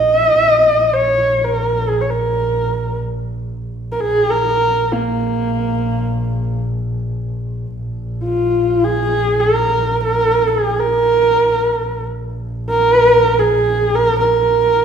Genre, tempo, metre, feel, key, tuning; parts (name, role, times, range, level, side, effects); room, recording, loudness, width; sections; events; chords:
mongolian traditional, Mongolian folk; free time; Bb yu mode; A4 = 440 Hz
dark horsehead fiddle; melody; 0.0-14.8 s; Bb3 to Eb5; -14 LUFS; right 1 dB
dark double bass; drone; 0.0-14.8 s; Bb1; -22 LUFS; equal
wet large studio reverb, RT60 1.4 s; band playing live in one room; -14 LUFS; side -7 dB against mid
0.0-7.8 A section; 7.8-14.8 A section